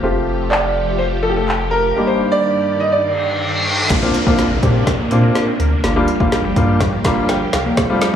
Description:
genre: dance-pop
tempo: 124 BPM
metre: 4/4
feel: straight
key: Bb major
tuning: A4 = 440 Hz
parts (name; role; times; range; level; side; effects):
- clear concert grand piano; accompaniment; 0.0-8.2 s; G2 to Bb5; -20 LUFS; equal; sidechain pumping, slapback echo
- phased string machine; sustained chords; 0.0-8.2 s; G2 to D5; -24 LUFS; equal; ensemble chorus, phaser, sidechain pumping
- round analog bass; bass; 0.0-8.0 s; F1 to Bb2; -20 LUFS; equal; sidechain pumping
- clear concert grand piano; melody; 0.5-3.6 s; G4 to Eb5; -18 LUFS; right 2 dB; slapback echo
- deep house drum kit; drums; 0.5-8.1 s; crash cymbal, handclaps, hi-hat, kick drum, snare drum; -19 LUFS; equal; none
- reverse cymbal, riser and downlifter; sound effects; 3.1-8.2 s; none; -23 LUFS; equal; none
- glassy wavetable pluck; arpeggios; 3.9-8.2 s; G3 to Bb4; -24 LUFS; left 1 dB; chorus, sidechain pumping, ping-pong delay, slapback echo
room: light reverb, digital ambience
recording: live gig heard through the venue's PA, club reverb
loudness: -14 LUFS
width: side -9 dB against mid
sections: 0.0-3.9 A section; 3.9-8.2 B section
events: reverse cymbal 3.1-3.9; build-up 3.9-8.2; drum fill 3.9-8.2; riser 3.9-8.2; grand piano fill 6.8-7.8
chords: 0.0 Fadd9; 2.0 Ebmaj7/G; 3.9 Bbadd9; 5.8 Gm7

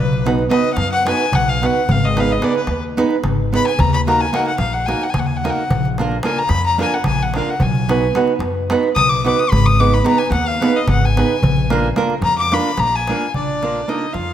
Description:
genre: balkan folk, Balkan wedding band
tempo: 220 BPM (eighths)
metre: 7/8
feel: straight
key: Bb phrygian dominant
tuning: A4 = 441 Hz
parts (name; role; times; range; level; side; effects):
- rich violin; melody; 0.0-14.3 s; Cb5 to D#6; -20 LUFS; left 3 dB; none
- upright bass; bass; 0.0-14.3 s; Ab1 to F#2; -20 LUFS; equal; none
- darbuka; percussion; 0.1-14.3 s; none; -22 LUFS; left 1 dB; none
- nylon-string guitar; accompaniment; 0.3-14.1 s; Bb3 to B4; -19 LUFS; right 4 dB; none
- accordion; second line; 13.4-14.3 s; D4 to F4; -26 LUFS; right 6 dB; none
room: moderate concert hall reverb, RT60 2.1 s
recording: none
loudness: -14 LUFS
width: side -10 dB against mid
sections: 0.0-13.4 A section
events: violin solo 0.0-13.4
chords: 0.0 B; 1.9 Abm; 3.8 Ebm; 5.7 Bb; 7.6 B; 9.5 Abm; 11.4 Bb

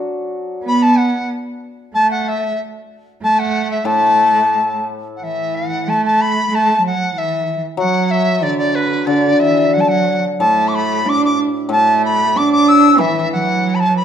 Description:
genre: chinese traditional, Chinese chamber ensemble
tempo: 93 BPM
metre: 2/4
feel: rubato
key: A zhi mode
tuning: A4 = 435 Hz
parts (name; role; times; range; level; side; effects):
- hammered dulcimer; accompaniment; 0.0-0.6, 3.9-14.0 s; A2 to F#4; -20 LUFS; left 3 dB; none
- dark cello; second line; 0.6-14.0 s; D3 to D4; -18 LUFS; right 4 dB; none
- bright reedy large dizi; melody; 0.7-14.0 s; B4 to E6; -15 LUFS; left 1 dB; none
room: moderate recital hall reverb, RT60 1.6 s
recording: minimal, uncompressed stereo recording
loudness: -13 LUFS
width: side -8 dB against mid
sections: 0.0-5.2 A section; 5.2-14.0 B section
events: none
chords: none

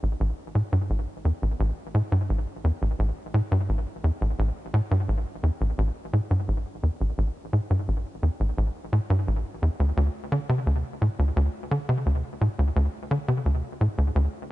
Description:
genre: ambient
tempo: 86 BPM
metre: 4/4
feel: straight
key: A minor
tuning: A4 = 438 Hz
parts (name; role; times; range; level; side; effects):
- tight sequencer bass; solo; 0.0-14.3 s; A1 to D3; -23 LUFS; equal; wide subtle chorus, analog delay
room: little or no reverb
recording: nothing above 10.7 kHz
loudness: -24 LUFS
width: side -17 dB against mid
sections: 0.0-14.5 A section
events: none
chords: none

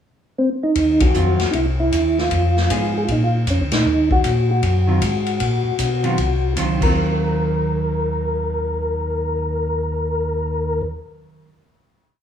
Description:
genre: soul jazz organ trio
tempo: 155 BPM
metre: 4/4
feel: swing 65% on 8ths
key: Eb dorian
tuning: A4 = 440 Hz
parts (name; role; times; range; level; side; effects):
- percussive tonewheel organ; melody; 0.4-10.8 s; C4 to Bb4; -21 LUFS; left 1 dB; slow rotary speaker, chorus vibrato
- tonewheel organ; bass; 0.8-10.8 s; C2 to Cb3; -21 LUFS; equal; overdrive, slow rotary speaker
- swinging big-band drum kit; drums; 0.8-6.9 s; crash cymbal, hi-hat, kick drum, ride cymbal, snare drum; -24 LUFS; left 1 dB; none
- hollow-body jazz guitar; accompaniment; 1.1-11.6 s; Eb3 to Ab4; -25 LUFS; right 3 dB; none
room: light reverb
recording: small room reverb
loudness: -17 LUFS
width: side -9 dB against mid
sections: 0.0-0.8 pickup bar; 0.8-7.0 A section; 7.0-10.1 final hit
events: band accent 1.0, 3.7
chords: 0.0 N.C.; 0.8 Ebm69; 1.5 C; 2.3 Fm7b5; 3.1 Bb; 3.9 Ebm69

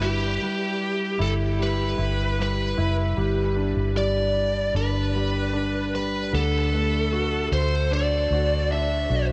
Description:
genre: pop ballad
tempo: 76 BPM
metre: 4/4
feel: straight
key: G major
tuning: A4 = 438 Hz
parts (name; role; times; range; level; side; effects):
- biting lead guitar; melody; 0.0-9.3 s; G4 to E5; -28 LUFS; equal; overdrive
- warm concert grand piano; accompaniment; 0.0-9.3 s; D3 to F#4; -30 LUFS; equal; lush chorus
- vintage muted fingered electric bass; bass; 0.0-9.3 s; F#1 to D2; -27 LUFS; equal; none
room: moderate huge ambient reverb, RT60 7.6 s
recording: dreamy mix soaked in reverb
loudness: -24 LUFS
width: mono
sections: 0.0-9.3 A section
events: none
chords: 0.0 Em/G; 3.2 G; 6.3 D

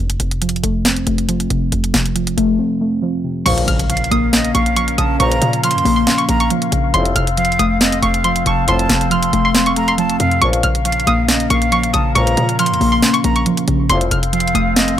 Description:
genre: hip hop, trap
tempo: 138 BPM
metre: 4/4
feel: half-time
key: Bb harmonic minor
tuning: A4 = 440 Hz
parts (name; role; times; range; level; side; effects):
- muted felt-like synth keys; accompaniment; 0.0-15.0 s; F2 to Db4; -18 LUFS; equal; chorus, phaser
- short 808-style bass; bass; 0.0-15.0 s; F1 to Bb2; -20 LUFS; equal; tube saturation
- trap drum kit; drums; 0.1-15.0 s; crash cymbal, hi-hat, snare drum; -18 LUFS; equal; overdrive
- string-like resonator pluck; melody; 3.5-15.0 s; C6 to F6; -20 LUFS; equal; chorus, phaser
- mellow flute section; sustained chords; 3.5-15.0 s; C4 to F5; -24 LUFS; left 8 dB; none
- mellow brass ensemble; stabs; 3.5-14.2 s; C2 to F3; -22 LUFS; left 3 dB; none
- impact; sound effects; 3.5-5.2 s; none; -27 LUFS; equal; none
- breathy bright jazz flute; second line; 3.9-15.0 s; Eb5 to C6; -21 LUFS; right 3 dB; analog delay
room: digital ambience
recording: dry, gritty hardware recording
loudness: -13 LUFS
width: side -10 dB against mid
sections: 0.0-3.5 A section; 3.5-15.0 B section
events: break 2.6-3.5; impact 3.5-5.2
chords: 0.0 F; 3.5 Bbm; 6.9 F; 10.4 Bbm; 13.9 F

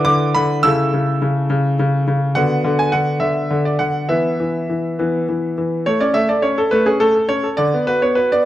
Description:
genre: classical-period piano sonatina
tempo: 70 BPM (dotted quarters)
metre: 6/8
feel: straight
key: A major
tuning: A4 = 441 Hz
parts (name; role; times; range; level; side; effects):
- clear grand piano; solo; 0.0-8.5 s; C#3 to E6; -15 LUFS; equal; none
room: moderate recital hall reverb, RT60 1.7 s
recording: close, detailed microphones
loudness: -15 LUFS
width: side -13 dB against mid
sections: 0.0-5.9 A section; 5.9-8.5 B section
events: none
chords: 0.0 E5/D; 0.6 A/C#; 2.3 Bm/D; 4.1 E5; 5.9 A; 7.6 Bm/D

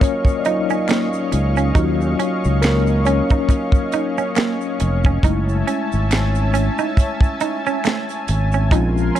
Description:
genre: R&B, neo-soul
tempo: 69 BPM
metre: 4/4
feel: swing 57% on 16ths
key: unclear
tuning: A4 = 440 Hz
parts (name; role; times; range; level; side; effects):
- semi-hollow electric guitar; second line; 0.0-9.2 s; A3 to Eb4; -23 LUFS; right 9 dB; none
- mellow tine electric piano; accompaniment; 0.0-9.2 s; F3 to Eb5; -22 LUFS; left 4 dB; medium stereo tremolo
- lush unison pad; sustained chords; 0.0-9.2 s; Db4 to Db6; -25 LUFS; left 2 dB; chorus
- tight funk drum kit; drums; 0.0-9.2 s; finger snaps, hi-hat, kick drum, snare drum; -18 LUFS; right 1 dB; none
- tube shaker and finger snaps; percussion; 0.0-9.1 s; none; -37 LUFS; left 3 dB; none
- sustaining fretless electric bass; bass; 1.3-9.1 s; F1 to Eb2; -18 LUFS; equal; lush chorus
room: studio reverb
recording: dark, warm production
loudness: -16 LUFS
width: side -11 dB against mid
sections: 0.0-9.2 A section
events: tine electric piano solo 0.0-9.2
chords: 0.0 Ebm9; 5.2 Gbm9 (rootless)

